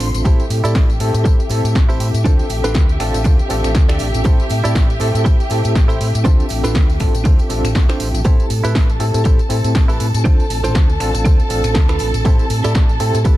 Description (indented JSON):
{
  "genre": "filtered disco house",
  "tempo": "120 BPM",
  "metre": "4/4",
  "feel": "swing 57% on 16ths",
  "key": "A minor",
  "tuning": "A4 = 441 Hz",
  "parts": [
    { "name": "bright reed electric piano", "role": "accompaniment", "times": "0.0-13.4 s", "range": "C4 to A4", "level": "-23 LUFS", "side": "equal", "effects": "fast tremolo, phaser, sidechain pumping" },
    { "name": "warm studio string section", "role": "sustained chords", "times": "0.0-13.4 s", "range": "C4 to C6", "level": "-26 LUFS", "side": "equal", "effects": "sidechain pumping" },
    { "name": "direct-recorded clean electric guitar", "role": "riff", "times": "0.0-13.4 s", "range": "D4 to D5", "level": "-24 LUFS", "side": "right 3 dB", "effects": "sidechain pumping" },
    { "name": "overdriven fingered electric bass", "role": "bass", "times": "0.0-13.4 s", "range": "A1 to A2", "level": "-19 LUFS", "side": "equal", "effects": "sidechain pumping" },
    { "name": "punchy analog drum machine", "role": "drums", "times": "0.0-13.4 s", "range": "finger snaps, hi-hat, snare drum, tambourine", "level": "-26 LUFS", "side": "equal", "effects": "sidechain pumping on hats, sidechain pumping on perc" },
    { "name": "tambourine", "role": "percussion", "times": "0.0-13.4 s", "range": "none", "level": "-36 LUFS", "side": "right 7 dB", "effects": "sidechain pumping on perc" },
    { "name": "electronic kick drum", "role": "drums", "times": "0.3-13.4 s", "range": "none", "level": "-13 LUFS", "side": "equal", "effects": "none" }
  ],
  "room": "little or no reverb",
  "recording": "dark, warm production",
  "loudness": "-13 LUFS",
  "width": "side -15 dB against mid",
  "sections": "0.0-13.4 A section",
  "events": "none",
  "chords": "0.3 Am7; 2.3 Dm7; 4.3 Am7; 6.3 Dm7; 8.3 Am7; 10.3 Dm7; 12.3 Am7",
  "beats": "| 0.25 0.75 1.25 1.75 | 2.25 2.75 3.25 3.75 | 4.25 4.75 5.25 5.75 | 6.25 6.75 7.25 7.75 | 8.25 8.75 9.25 9.75 | 10.25 10.75 11.25 11.75 | 12.25 12.75 13.25"
}